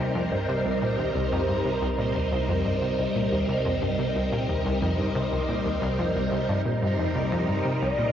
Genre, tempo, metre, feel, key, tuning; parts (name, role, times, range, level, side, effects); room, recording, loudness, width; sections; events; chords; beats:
ambient, sequencer-driven space music; 90 BPM; 4/4; straight; C minor; A4 = 441 Hz
phased string machine; sustained chords; 0.0-8.1 s; C3 to C5; -26 LUFS; equal; ensemble chorus, phaser
analog pluck; riff; 0.0-8.1 s; C2 to C3; -27 LUFS; equal; chorus, ping-pong delay
warm sub bass; bass; 0.0-8.1 s; C2; -40 LUFS; equal
expressive portamento lead; melody; 7.8-8.1 s; D5; -26 LUFS; left 2 dB; lush chorus
wet huge ambient reverb, RT60 8.3 s; worn, warbling old tape, cassette tape, warbly pitch drift, nothing above 7.6 kHz; -23 LUFS; side -9 dB against mid
0.0-8.1 A section
0.0 Cm7
0.49 1.16 | 1.82 2.49 3.16 3.82 | 4.49 5.16 5.82 6.49 | 7.16 7.82